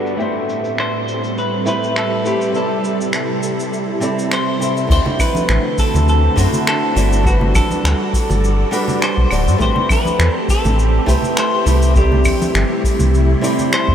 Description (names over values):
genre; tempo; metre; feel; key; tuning
sunset chillout; 102 BPM; 4/4; swing 54% on 16ths; A dorian; A4 = 440 Hz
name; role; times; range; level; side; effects
flamenco guitar; accompaniment; 0.0-13.9 s; C3 to E5; -22 LUFS; right 1 dB; auto-pan, analog delay
soft string machine; sustained chords; 0.0-13.9 s; G2 to D5; -22 LUFS; equal; ensemble chorus
soft brush drum kit; drums; 0.1-13.9 s; cabasa, claves, crash cymbal, finger snaps, hi-hat; -24 LUFS; equal; none
clean electric guitar; melody; 0.8-13.9 s; F#4 to C5; -21 LUFS; left 1 dB; lush chorus, analog delay
round analog bass; bass; 4.9-13.9 s; D1 to G2; -15 LUFS; equal; none
electronic kick drum; drums; 4.9-13.9 s; none; -18 LUFS; equal; overdrive
congas; percussion; 5.1-13.7 s; none; -26 LUFS; right 1 dB; none
room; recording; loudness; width
wet huge ambient reverb, RT60 7.3 s; dreamy mix soaked in reverb, low-pass filter; -14 LUFS; side -9 dB against mid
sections
0.0-4.9 A section; 4.9-13.9 B section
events
none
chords
0.2 Am7; 2.5 C6; 4.9 D7; 7.3 Gmaj9; 9.6 Am7; 12.0 C6